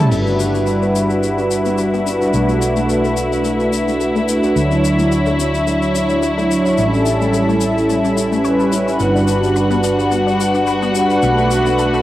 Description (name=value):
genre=nu-disco, nu disco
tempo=108 BPM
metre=4/4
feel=swing 55% on 16ths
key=unclear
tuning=A4 = 440 Hz
part: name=warm analog pad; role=accompaniment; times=0.0-12.0 s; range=F#3 to C#5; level=-16 LUFS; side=equal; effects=chorus, cassette tape, analog delay
part: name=rich chamber string section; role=sustained chords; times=0.0-12.0 s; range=E4 to A5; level=-21 LUFS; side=left 2 dB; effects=low-pass filter, cassette tape
part: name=analog pluck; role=arpeggios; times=0.0-12.0 s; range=A3 to C#5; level=-27 LUFS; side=left 6 dB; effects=none
part: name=hollow-body short-scale fingered electric bass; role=bass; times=0.1-12.0 s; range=G1 to D2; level=-22 LUFS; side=equal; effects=tube saturation
part: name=tube shaker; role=percussion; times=0.1-12.0 s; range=none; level=-30 LUFS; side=left 8 dB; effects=none
room=light reverb, small room ambience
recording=home recording on cassette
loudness=-14 LUFS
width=side -14 dB against mid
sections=0.1-12.0 A section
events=filter sweep on string section 0.1-12.0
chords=0.1 Gmaj7; 2.3 Bm7; 4.6 Dmaj9; 6.8 A7; 9.0 Gmaj7; 11.2 Bm7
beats=| 0.12 0.67 1.23 1.78 | 2.34 2.90 3.45 4.01 | 4.56 5.12 5.67 6.23 | 6.78 7.34 7.89 8.45 | 9.01 9.56 10.12 10.67 | 11.23 11.78